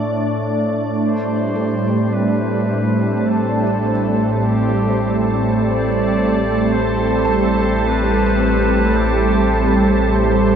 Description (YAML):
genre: ambient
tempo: 53 BPM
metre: 4/4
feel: straight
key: A minor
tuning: A4 = 440 Hz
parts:
  - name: soft additive organ-like pad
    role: sustained chords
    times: 0.0-10.6 s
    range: A2 to D5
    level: -15 LUFS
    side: right 1 dB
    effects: ensemble chorus, built-in reverb
  - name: deep rumbling drone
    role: bass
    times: 3.9-10.6 s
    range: A1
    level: -24 LUFS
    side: left 1 dB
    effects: built-in reverb
  - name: warm flugelhorn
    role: melody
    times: 1.0-10.6 s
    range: G4 to D5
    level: -26 LUFS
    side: left 1 dB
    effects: ping-pong delay
  - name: felt-muted upright piano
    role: arpeggios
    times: 1.6-10.6 s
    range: A4 to A5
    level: -33 LUFS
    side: equal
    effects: none
room: wet huge ambient reverb, RT60 8.8 s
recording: none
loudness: -15 LUFS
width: side -8 dB against mid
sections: 1.0-10.6 A section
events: fade-in on flugelhorn 1.0-10.6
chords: 0.0 Asus4; 1.0 Am7